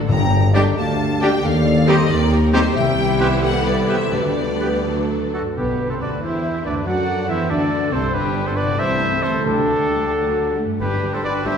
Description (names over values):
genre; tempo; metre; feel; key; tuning
classical, dramatic, fast romantic movement for symphony orchestra; 82-94 BPM (dotted quarters); 6/8; rubato; G major; A4 = 440 Hz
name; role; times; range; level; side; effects
concert harp; arpeggios; 0.0-11.6 s; F#2 to C5; -26 LUFS; left 3 dB; none
clear studio violin section; melody; 0.1-11.6 s; D4 to Bb5; -29 LUFS; left 4 dB; none
mellow flute section; second line; 0.1-11.6 s; G4 to B5; -29 LUFS; left 2 dB; none
mellow tuba; bass; 0.1-11.5 s; G1 to F#2; -26 LUFS; right 2 dB; none
rich symphonic cello section; bass; 0.1-11.5 s; C2 to F#3; -26 LUFS; right 1 dB; none
rich symphonic double bass section; bass; 0.1-11.5 s; G1 to F#2; -26 LUFS; right 1 dB; none
timpani; percussion; 0.1-0.7, 4.1-6.2, 9.5-10.1 s; G2 to D3; -26 LUFS; left 2 dB; none
mellow clarinet; second line; 0.5-11.6 s; B3 to G4; -31 LUFS; left 2 dB; none
warm oboe; second line; 0.5-11.6 s; D4 to D5; -30 LUFS; right 1 dB; none
warm symphonic violin section; second line; 0.5-11.6 s; D4 to D5; -30 LUFS; left 3 dB; none
warm trumpet; stabs; 0.5-11.6 s; F#4 to F#5; -25 LUFS; equal; none
rich symphonic viola section; accompaniment; 0.6-11.5 s; F#3 to F#4; -26 LUFS; equal; none
bright trombone section; sustained chords; 0.6-11.6 s; B2 to D4; -30 LUFS; right 2 dB; none
warm French horn section; sustained chords; 0.8-11.6 s; B3 to B4; -28 LUFS; left 2 dB; none
room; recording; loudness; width
wet scoring stage reverb, RT60 1.6 s; heard from further back in the room; -16 LUFS; side -7 dB against mid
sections
0.0-5.6 A section; 5.6-11.6 B section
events
none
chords
0.1 Gm; 1.4 Cm/Eb; 2.8 Cmaj7; 4.1 G/D; 4.9 D; 5.6 G/B; 6.9 D7; 8.1 G; 8.8 Am/C; 9.5 Dsus4; 10.1 D; 10.8 G5